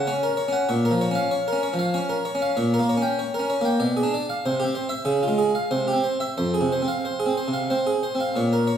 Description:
classical, baroque-style suite movement for harpsichord; 89-98 BPM; 3/4; rubato; F minor; A4 = 443 Hz
harpsichord; solo; 0.0-8.8 s; F2 to G5; -21 LUFS; equal
wet recital hall reverb, RT60 1.3 s; heard from further back in the room; -21 LUFS; side -9 dB against mid
0.0-8.4 A section
0.0 Gb; 0.7 Bbm; 2.6 Gdim/Bb; 3.8 Bdim7; 4.4 C; 5.1 Db; 5.7 C; 6.4 Fm

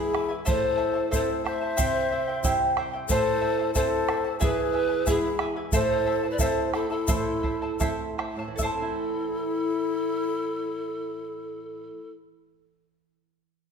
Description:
andean folk, Andean ensemble; 73-91 BPM; 2/4; straight; A minor; A4 = 439 Hz
breathy mellow polished pan flute; melody; 0.0-12.1 s; G#4 to E5; -28 LUFS; right 1 dB
breathy large quena; second line; 0.0-12.1 s; E4 to C5; -30 LUFS; left 8 dB
charango; accompaniment; 0.0-12.2 s; E4 to A5; -31 LUFS; right 1 dB
flamenco guitar; accompaniment; 0.0-12.3 s; E2 to E4; -34 LUFS; right 5 dB
bombo; percussion; 0.1-9.0 s; -30 LUFS; right 2 dB
tube shaker; percussion; 0.5-9.0 s; -34 LUFS; left 6 dB
moderate concert hall reverb, RT60 1.7 s; minimal, uncompressed stereo recording; -24 LUFS; side -6 dB against mid
0.0-8.6 A section; 8.6-11.9 B section
slowing down 5.7-8.6
0.5 Am; 1.8 C; 3.1 Am; 4.4 E; 5.7 Am

